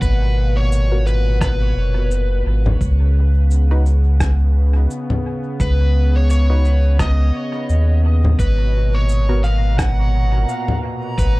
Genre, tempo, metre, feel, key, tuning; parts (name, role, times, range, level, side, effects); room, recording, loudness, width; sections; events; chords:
ambient dub; 86 BPM; 4/4; swing 57% on 16ths; G# minor; A4 = 441 Hz
overdriven slide guitar; melody; 0.0-11.4 s; B4 to F#5; -27 LUFS; left 2 dB; dub echo
warm analog pad; sustained chords; 0.0-11.4 s; A#2 to B3; -26 LUFS; equal; chorus
warm sub bass; bass; 0.0-11.4 s; F#1 to D#2; -14 LUFS; equal
electronic cabasa, rim click and congas; drums; 0.0-11.3 s; -24 LUFS; left 1 dB; dub echo
electronic kick drum; drums; 0.0-11.3 s; -20 LUFS; equal
filtered dub chord stab; stabs; 0.9-9.4 s; B3 to B4; -32 LUFS; left 1 dB; chorus, dub echo
backwards swelling texture; texture; 8.9-11.4 s; A#5; -33 LUFS; right 4 dB; built-in reverb
little or no reverb; dark, warm production; -14 LUFS; side -21 dB against mid
0.0-11.4 A section
0.0 G#m9; 2.8 C#7sus2; 8.4 G#m9